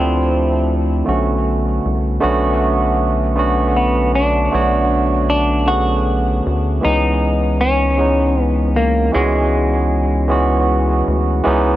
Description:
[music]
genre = slow six-eight R&B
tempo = 52 BPM (dotted quarters)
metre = 6/8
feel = straight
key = unclear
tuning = A4 = 436 Hz
[part]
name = semi-hollow electric guitar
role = melody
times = 0.0-11.0 s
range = G#3 to F#4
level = -19 LUFS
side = left 1 dB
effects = dub echo
[part]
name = barky tine electric piano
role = accompaniment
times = 0.0-11.8 s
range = D3 to C#5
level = -17 LUFS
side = right 2 dB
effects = overdrive, dub echo
[part]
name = rubbery square bass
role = bass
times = 0.0-11.8 s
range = B1 to D2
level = -18 LUFS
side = equal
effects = none
[sound]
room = light reverb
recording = echo-heavy mix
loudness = -14 LUFS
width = side -14 dB against mid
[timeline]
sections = 0.0-6.8 A section; 6.8-11.8 A section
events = none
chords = 0.0 Dm9; 1.1 Bm9; 6.8 C#m9

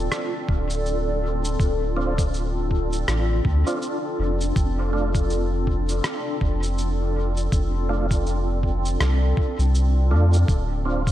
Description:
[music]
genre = ambient dub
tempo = 81 BPM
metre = 4/4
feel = swing 58% on 16ths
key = D minor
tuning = A4 = 440 Hz
[part]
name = granular cloud pad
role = sustained chords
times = 0.0-11.1 s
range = C4 to D5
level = -27 LUFS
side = left 1 dB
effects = built-in reverb, wide subtle chorus
[part]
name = soft dub sub bass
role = bass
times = 0.0-11.1 s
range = D1 to F2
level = -22 LUFS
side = equal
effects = tube saturation
[part]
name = electronic rim click and shaker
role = drums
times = 0.1-11.1 s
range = none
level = -32 LUFS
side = equal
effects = dub echo
[part]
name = electronic kick drum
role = drums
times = 0.5-11.1 s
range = none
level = -23 LUFS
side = equal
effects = none
[part]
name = percussive tonewheel organ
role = stabs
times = 2.0-11.0 s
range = A3 to F4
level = -31 LUFS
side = right 3 dB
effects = chorus vibrato, fast rotary speaker, dub echo
[sound]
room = light reverb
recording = none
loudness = -20 LUFS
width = side -13 dB against mid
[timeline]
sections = 0.0-11.1 A section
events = none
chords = 0.0 Dm7; 4.6 F6; 10.5 Dm7

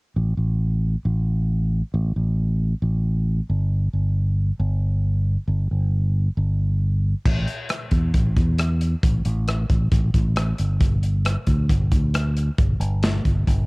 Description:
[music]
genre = folk rock and heartland rock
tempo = 135 BPM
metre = 4/4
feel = straight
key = unclear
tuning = A4 = 440 Hz
[part]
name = fingered electric bass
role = bass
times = 0.2-13.7 s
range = G1 to E2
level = -20 LUFS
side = equal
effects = none
[part]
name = natural country drum kit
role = drums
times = 7.3-13.6 s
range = crash cymbal, hi-hat, kick drum, rim click, snare drum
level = -22 LUFS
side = equal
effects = cassette tape
[sound]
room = little or no reverb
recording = home recording on cassette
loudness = -19 LUFS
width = side -30 dB against mid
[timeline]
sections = 0.2-7.3 A section; 7.3-13.7 B section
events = none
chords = none

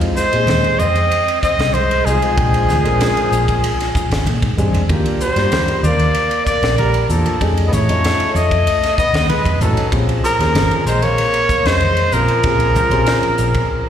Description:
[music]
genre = electric jazz fusion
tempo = 95 BPM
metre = 4/4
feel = straight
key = Bb minor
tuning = A4 = 439 Hz
[part]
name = dark grand piano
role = accompaniment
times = 0.0-13.8 s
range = Ab3 to G5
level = -24 LUFS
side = left 2 dB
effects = slapback echo
[part]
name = crisp fusion drum kit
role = drums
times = 0.0-13.7 s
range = hi-hat, kick drum, ride cymbal, snare drum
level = -22 LUFS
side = equal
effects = none
[part]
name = warm trumpet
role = melody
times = 0.2-13.9 s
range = Ab4 to Eb5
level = -17 LUFS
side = left 1 dB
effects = slapback echo
[part]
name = breathy tenor saxophone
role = second line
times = 0.2-13.9 s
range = F3 to C4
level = -24 LUFS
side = right 3 dB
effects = slapback echo
[part]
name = vintage muted fingered electric bass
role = bass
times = 0.2-13.5 s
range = Ab1 to Bb2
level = -18 LUFS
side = equal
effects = none
[part]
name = congas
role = percussion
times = 0.5-12.9 s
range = none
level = -25 LUFS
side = right 1 dB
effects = none
[sound]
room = light reverb, studio reverb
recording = live gig heard through the venue's PA, recital hall reverb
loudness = -13 LUFS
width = side -9 dB against mid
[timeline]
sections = 0.0-13.9 A section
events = break 13.7; grand piano fill 13.7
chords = 0.0 Fm7; 2.4 Bb13; 4.9 Ebmaj9; 7.4 F7alt; 9.9 Bbm9

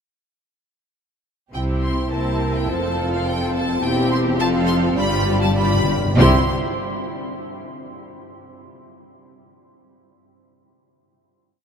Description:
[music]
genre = quick classical-period movement for symphony orchestra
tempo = 104 BPM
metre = 2/4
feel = uneven beats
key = C major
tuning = A4 = 439 Hz
[part]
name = clear studio violin section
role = melody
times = 1.5-6.5 s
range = F5 to C6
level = -26 LUFS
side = right 1 dB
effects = none
[part]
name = rich studio violin section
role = second line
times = 1.5-6.5 s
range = G4 to F5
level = -28 LUFS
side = right 1 dB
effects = none
[part]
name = rich studio viola section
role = accompaniment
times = 1.5-6.5 s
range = G3 to G4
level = -26 LUFS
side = left 2 dB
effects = none
[part]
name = mellow French horn section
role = sustained chords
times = 1.5-6.4 s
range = Bb3 to F4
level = -25 LUFS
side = left 1 dB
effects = none
[part]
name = rich studio cello section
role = bass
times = 1.5-6.5 s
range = E2 to C3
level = -25 LUFS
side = equal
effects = none
[part]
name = rich studio double bass section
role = bass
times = 1.5-6.5 s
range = E1 to C2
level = -23 LUFS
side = equal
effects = none
[part]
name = timpani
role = percussion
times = 5.0-6.4 s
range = G2 to C3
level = -26 LUFS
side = right 1 dB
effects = none
[sound]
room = wet cathedral reverb, RT60 5.7 s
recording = in a vast, echoing space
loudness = -17 LUFS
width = side -7 dB against mid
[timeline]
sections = 1.5-6.2 A section; 6.2-7.4 final chord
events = timpani fill 5.0-6.2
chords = 1.5 C; 2.1 C7; 2.7 F; 3.8 C/E; 4.4 F; 5.0 G7; 6.2 C

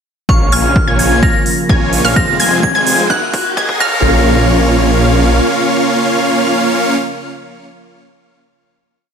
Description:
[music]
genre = EDM, festival progressive house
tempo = 128 BPM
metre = 4/4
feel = straight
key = Bb minor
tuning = A4 = 440 Hz
[part]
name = glassy synth bell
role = melody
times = 0.3-7.0 s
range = Db6 to Bb6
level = -18 LUFS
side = equal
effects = chorus, digital delay
[part]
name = lush unison pad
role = sustained chords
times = 0.3-7.0 s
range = C3 to Gb4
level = -21 LUFS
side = right 1 dB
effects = chorus, sidechain pumping
[part]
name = wide unison pluck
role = arpeggios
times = 0.3-7.0 s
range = F6 to Ab6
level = -20 LUFS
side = equal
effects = sidechain pumping, digital delay
[part]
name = big supersaw lead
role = riff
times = 0.3-7.0 s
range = Ab3 to Ab5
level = -14 LUFS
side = equal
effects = sidechain pumping, low-pass filter, digital delay
[part]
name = detuned saw bass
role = bass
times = 0.3-5.4 s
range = Eb1 to Bb1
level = -16 LUFS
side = equal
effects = sidechain pumping
[part]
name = electronic kick drum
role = drums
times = 0.3-3.9 s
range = none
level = -15 LUFS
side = equal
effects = overdrive
[part]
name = riser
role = sound effects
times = 1.6-4.0 s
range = none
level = -23 LUFS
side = left 2 dB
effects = none
[part]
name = electronic hi-hat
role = drums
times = 0.5-3.4 s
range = none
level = -20 LUFS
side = right 4 dB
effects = overdrive
[sound]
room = light reverb, digital ambience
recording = high-pass filter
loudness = -10 LUFS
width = side -7 dB against mid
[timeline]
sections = 0.3-4.0 build; 4.0-7.8 final hit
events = build-up 0.3-4.0; filter sweep on supersaw synth 0.3-4.0; filter sweep 0.3-4.0; riser 1.6-4.0; drum fill 2.2-4.0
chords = 0.3 Bbm; 2.2 Fm; 3.1 Ebm; 3.8 Bbm

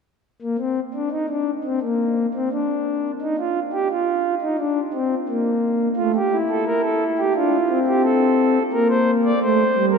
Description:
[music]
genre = classical, baroque-style 3-part fugue for pipe organ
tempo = 87 BPM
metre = 4/4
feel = straight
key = unclear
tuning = A4 = 439 Hz
[part]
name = pipe organ, principal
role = solo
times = 0.4-10.0 s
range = G3 to D5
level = -18 LUFS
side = equal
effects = none
[sound]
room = wet cathedral reverb, RT60 5.7 s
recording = in a vast, echoing space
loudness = -18 LUFS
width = side -5 dB against mid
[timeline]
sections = 0.4-10.0 A section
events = none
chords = 0.4 N.C.; 7.4 Dm; 8.7 N.C.

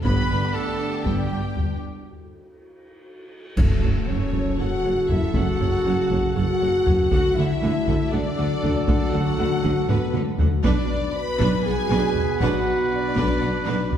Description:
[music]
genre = cinematic, epic orchestral film score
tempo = 238 BPM (eighths)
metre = 7/8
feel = straight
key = F# minor from 3.6 s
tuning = A4 = 440 Hz
[part]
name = warm symphonic violin section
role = melody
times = 0.0-13.9 s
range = A4 to B5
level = -35 LUFS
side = left 4 dB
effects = none
[part]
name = rich symphonic viola section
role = accompaniment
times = 0.0-13.9 s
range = D3 to F#5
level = -34 LUFS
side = equal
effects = none
[part]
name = mellow French horn section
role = sustained chords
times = 0.0-13.9 s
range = G3 to B4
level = -26 LUFS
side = left 1 dB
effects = none
[part]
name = mellow trombone section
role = sustained chords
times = 0.0-14.0 s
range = B2 to B3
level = -31 LUFS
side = right 2 dB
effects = none
[part]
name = warm trumpet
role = stabs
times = 0.0-14.0 s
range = G4 to B4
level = -32 LUFS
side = right 1 dB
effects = none
[part]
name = mellow tuba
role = bass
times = 0.0-13.8 s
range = F#1 to D2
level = -29 LUFS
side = right 1 dB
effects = none
[part]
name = rich studio cello section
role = bass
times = 0.0-13.7 s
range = F#2 to D3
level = -29 LUFS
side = right 2 dB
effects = none
[part]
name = taiko ensemble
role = drums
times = 0.0-14.0 s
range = none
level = -25 LUFS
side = left 1 dB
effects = none
[part]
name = cymbal swell, clash cymbals and concert bass drum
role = percussion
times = 0.0-4.5 s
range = none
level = -31 LUFS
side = equal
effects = none
[part]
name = clear symphonic violin section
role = second line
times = 0.1-13.9 s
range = D4 to B5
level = -34 LUFS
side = left 2 dB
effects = none
[part]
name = rich studio double bass section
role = bass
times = 0.1-13.8 s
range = F#1 to D2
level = -29 LUFS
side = right 1 dB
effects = none
[part]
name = timpani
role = percussion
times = 3.6-4.3 s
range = F#2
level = -28 LUFS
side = right 1 dB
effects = none
[sound]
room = wet scoring stage reverb, RT60 1.4 s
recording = heard from further back in the room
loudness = -19 LUFS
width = side -9 dB against mid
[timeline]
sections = 0.0-3.6 A section; 3.6-14.0 B section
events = break 1.8-3.6; drum fill 2.8-3.6, 9.9-10.6; band accent 3.6-4.1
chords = 0.0 G; 1.8 N.C.; 3.6 F#m; 7.1 D; 10.6 Bm

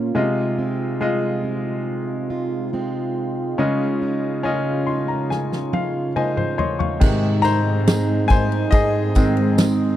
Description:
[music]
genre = pop ballad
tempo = 70 BPM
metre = 4/4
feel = straight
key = Ab major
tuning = A4 = 440 Hz
[part]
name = bright baby grand piano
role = accompaniment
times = 0.0-10.0 s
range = Bb2 to Db6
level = -22 LUFS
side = left 2 dB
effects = none
[part]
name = clear French horn section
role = sustained chords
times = 0.0-10.0 s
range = Bb2 to F4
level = -27 LUFS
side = right 1 dB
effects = stereo widening
[part]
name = fingerpicked plugged-in steel-string acoustic guitar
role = arpeggios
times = 0.0-10.0 s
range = Ab2 to Ab4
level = -26 LUFS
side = right 5 dB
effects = none
[part]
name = natural country drum kit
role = drums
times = 5.3-9.8 s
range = crash cymbal, kick drum, ride cymbal, snare drum, toms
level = -19 LUFS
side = equal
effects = none
[part]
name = dark studio cello section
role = bass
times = 7.0-10.0 s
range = Ab2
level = -21 LUFS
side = left 1 dB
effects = none
[part]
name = tambourine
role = percussion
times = 7.0-9.8 s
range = none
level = -39 LUFS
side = right 5 dB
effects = none
[sound]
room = light reverb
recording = dry, close 1970s-style studio recording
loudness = -18 LUFS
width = side -12 dB against mid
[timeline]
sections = 0.0-7.0 A section; 7.0-10.0 B section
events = grand piano fill 4.4-7.0; drum fill 5.3-7.0; grand piano solo 7.0-10.0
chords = 0.2 Fm7/C; 3.6 Dbadd9; 7.0 Ab

